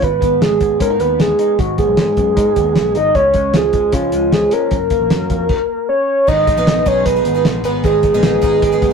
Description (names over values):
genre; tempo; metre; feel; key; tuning
jangly indie pop; 154 BPM; 4/4; straight; G# dorian; A4 = 438 Hz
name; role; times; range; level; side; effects
soft octave-layered synth lead; melody; 0.0-8.9 s; E#4 to D#5; -14 LUFS; right 1 dB; chorus
electric guitar through a small old amp; arpeggios; 0.0-8.9 s; F#2 to D#4; -22 LUFS; left 1 dB; none
vintage muted picked electric bass; bass; 0.0-8.9 s; F#1 to C#3; -23 LUFS; equal; none
cloth-damped thuddy drum kit; drums; 0.0-8.9 s; crash cymbal, hi-hat, kick drum, snare drum; -18 LUFS; equal; none
picked twelve-string acoustic guitar; accompaniment; 6.3-8.9 s; G#2 to G#4; -23 LUFS; right 1 dB; none
room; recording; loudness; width
moderate studio reverb, RT60 0.6 s; rough rehearsal-room recording; -12 LUFS; side -6 dB against mid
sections
0.0-6.3 A section; 6.3-8.9 B section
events
none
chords
0.0 G#m; 3.2 C#; 4.7 F#; 6.3 G#m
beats
| 0.03 0.42 0.81 1.20 | 1.59 1.98 2.37 2.76 | 3.15 3.54 3.93 4.33 | 4.72 5.11 5.50 5.89 | 6.28 6.67 7.06 7.45 | 7.84 8.23 8.63